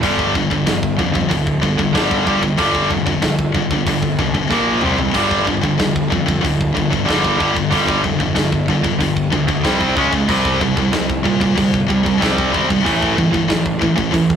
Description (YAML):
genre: heavy metal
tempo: 94 BPM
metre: 4/4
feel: straight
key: unclear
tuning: A4 = 440 Hz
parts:
  - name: heavy high-gain guitar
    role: riff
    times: 0.0-14.4 s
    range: G2 to C#4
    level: -18 LUFS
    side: left 6 dB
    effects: distortion
  - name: tight distorted guitar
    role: riff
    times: 0.0-14.4 s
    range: G2 to C#4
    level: -19 LUFS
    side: right 6 dB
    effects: distortion
  - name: fuzz picked electric bass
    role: bass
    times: 0.0-14.4 s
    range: D1 to Bb2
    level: -22 LUFS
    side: equal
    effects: overdrive
  - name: tight metal drum kit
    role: drums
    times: 0.0-14.4 s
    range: crash cymbal, hi-hat, kick drum, snare drum, toms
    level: -22 LUFS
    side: equal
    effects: none
room: moderate small room reverb, RT60 0.5 s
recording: rough rehearsal-room recording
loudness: -14 LUFS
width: side -8 dB against mid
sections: 0.0-14.4 A section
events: drum fill 4.5-5.2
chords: 0.0 G5; 4.5 Bb5; 4.8 C5; 5.2 G5; 9.6 C5; 10.0 C#5; 10.3 C5; 12.9 A5